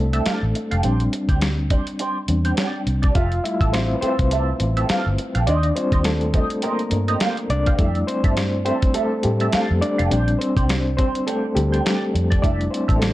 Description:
lush 1970s-style soul; 104 BPM; 4/4; swing 58% on 16ths; F major; A4 = 440 Hz
overdriven reed electric piano; accompaniment; 0.0-13.1 s; G3 to F5; -23 LUFS; left 1 dB; fast tremolo
vintage muted fingered electric bass; bass; 0.0-13.1 s; F1 to A2; -21 LUFS; equal
clean electric guitar; riff; 0.1-13.1 s; D4 to F5; -27 LUFS; right 4 dB; wah, analog chorus
dusty soul sampler-style drum kit; drums; 0.1-13.1 s; hi-hat, kick drum, snare drum; -22 LUFS; equal
light reverb; dark, warm production; -18 LUFS; side -16 dB against mid
0.0-13.1 A section
reed electric piano solo 0.0-13.1
0.0 Fmaj9; 0.8 Bb69 (rootless); 3.2 Fmaj9; 5.5 Eb6; 7.8 Fmaj9; 10.1 Bb69 (rootless); 12.4 Fmaj9

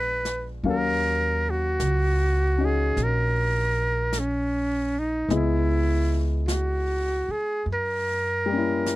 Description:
jazz ballad; 51 BPM; 4/4; swing 69% on 8ths; Eb minor; A4 = 445 Hz
trumpet with metal mute; melody; 0.0-9.0 s; Db4 to Cb5; -25 LUFS; right 1 dB
warm grand piano; accompaniment; 0.0-9.0 s; Gb3 to F5; -29 LUFS; left 5 dB
upright bass; bass; 0.0-9.0 s; Bb1 to Gb2; -26 LUFS; right 1 dB
jazz brush drum kit; drums; 0.2-9.0 s; brushed snare drum, hi-hat, snare drum; -38 LUFS; left 1 dB
little or no reverb; dry, close 1970s-style studio recording; -22 LUFS; side -17 dB against mid
0.0-9.0 A section
0.0 Bb7b9; 0.7 Ebm9; 5.3 Dbm7; 7.7 Gb7b9

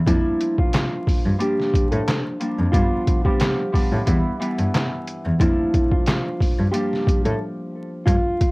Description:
hip hop, boom-bap hip-hop; 90 BPM; 4/4; swing 55% on 16ths; A4 = 440 Hz
Celtic harp; accompaniment; 0.0-8.1 s; E3 to E4; -26 LUFS; equal; high-pass filter, low-pass filter, cassette tape
mellow electric guitar; melody; 0.1-8.5 s; E4 to A4; -25 LUFS; equal; high-pass filter, low-pass filter, cassette tape
warm cello; bass; 0.1-8.1 s; E2 to A2; -23 LUFS; equal
trip hop sampler-style drum kit; drums; 0.1-8.5 s; handclaps, hi-hat, kick drum, snare drum; -20 LUFS; equal; cassette tape
light reverb; home recording on cassette, vinyl crackle; -18 LUFS; side -25 dB against mid
0.0-8.5 A section
break 7.4-8.1
0.1 Bb6/F; 2.7 G7; 4.1 Em; 5.4 Bb6/F

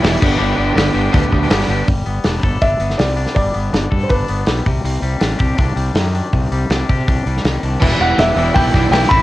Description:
indie rock; 162 BPM; 4/4; straight; G major; A4 = 439 Hz
bright tonewheel organ; sustained chords; 0.0-1.9, 7.8-9.2 s; D4 to A5; -27 LUFS; equal
overdriven electric guitar; riff; 0.0-1.9, 7.8-9.2 s; G2 to E4; -20 LUFS; right 4 dB; analog chorus
twangy electric guitar; riff; 0.0-9.2 s; E2 to A4; -22 LUFS; left 6 dB; wide subtle chorus
fuzz fingered electric bass; bass; 0.0-9.2 s; E1 to C3; -18 LUFS; equal; overdrive
loose indie drum kit; drums; 0.0-9.2 s; crash cymbal, hi-hat, kick drum, snare drum; -18 LUFS; equal
warm upright piano; melody; 2.6-4.6, 8.0-9.2 s; B4 to B5; -18 LUFS; equal; cassette tape, plate reverb
glockenspiel with hard plastic mallets; second line; 8.0-9.2 s; E6 to B6; -25 LUFS; right 3 dB; plate reverb
light reverb; home recording on cassette; -13 LUFS; side -16 dB against mid
0.0-1.9 A section; 1.9-7.8 B section; 7.8-9.2 A section
0.2 G; 1.9 Gadd9; 4.7 Cmadd9; 7.8 Em7

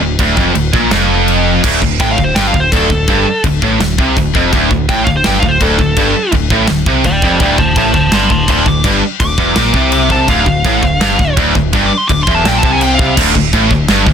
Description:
heavy metal; 166 BPM; 4/4; straight; D minor; A4 = 440 Hz
tight distorted guitar; riff; 0.0-14.1 s; D2 to C3; -17 LUFS; left 13 dB; distortion
tight distorted guitar; riff; 0.0-14.1 s; D2 to C3; -16 LUFS; right 11 dB; distortion
tight distorted guitar; riff; 0.0-14.1 s; D2 to C3; -19 LUFS; equal; distortion
growling picked electric bass; bass; 0.0-14.1 s; D1 to C2; -18 LUFS; equal; overdrive
modern studio drum kit; drums; 0.2-14.1 s; crash cymbal, kick drum, snare drum; -16 LUFS; equal
high-gain lead guitar; melody; 2.0-13.1 s; A4 to D6; -15 LUFS; equal; distortion
light reverb; dense, heavily limited modern master; -9 LUFS; side -8 dB against mid
0.0-1.6 A section; 1.6-13.2 B section
lead electric guitar solo 1.6-13.2
0.0 Dm; 1.6 D5

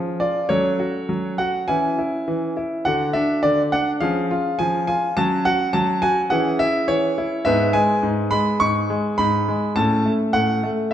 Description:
classical-period piano sonatina; 104 BPM; 4/4; rubato; A4 = 440 Hz
clear grand piano; solo; 0.0-10.9 s; G#2 to C#6; -18 LUFS; equal
wet recital hall reverb, RT60 1.7 s; -18 LUFS; side -10 dB against mid
0.0-10.9 A section
0.5 F#m; 1.7 C#m/E; 2.9 Dadd9; 4.0 C#/E#; 5.2 F#5; 6.3 C#m/E; 7.5 G#madd11; 9.8 A

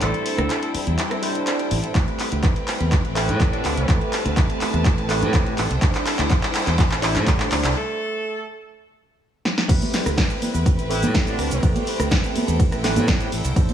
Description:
filtered disco house; 124 BPM; 4/4; straight; A minor; A4 = 436 Hz
brilliant horn section; melody; 0.0-4.0, 7.0-11.8 s; D3 to A4; -30 LUFS; equal; sidechain pumping, low-pass filter, digital delay
overdriven tine electric piano; accompaniment; 0.0-13.7 s; G3 to C5; -27 LUFS; right 1 dB; phaser, vintage 12-bit sampler grit, sidechain pumping, low-pass filter
clear symphonic violin section; sustained chords; 0.0-13.7 s; C4 to A5; -32 LUFS; right 1 dB; sidechain pumping, low-pass filter
direct-recorded clean electric guitar; riff; 0.0-13.7 s; G3 to B4; -33 LUFS; left 3 dB; sidechain pumping, low-pass filter
modern bright fingered electric bass; bass; 0.0-13.7 s; A1 to A2; -24 LUFS; equal; sidechain pumping, low-pass filter
punchy analog drum machine; drums; 0.0-13.7 s; crash cymbal, handclaps, hi-hat, ride cymbal, rim click, shaker, snare drum; -25 LUFS; equal; sidechain pumping on hats, sidechain pumping on cymbals, sidechain pumping on perc
electronic kick drum; drums; 1.9-13.7 s; -20 LUFS; equal
tube shaker and congas; percussion; 9.7-13.7 s; -28 LUFS; right 3 dB; sidechain pumping on perc, low-pass filter on perc
light reverb; -18 LUFS; side -9 dB against mid
0.0-9.7 A section; 9.7-13.7 B section
build-up 0.0-9.7; drum fill 0.0-7.8, 9.4; break 7.8-9.7; drop 9.7-13.7
0.0 D9sus4/A; 1.9 Am9; 5.6 D9sus4/A; 9.7 Am9

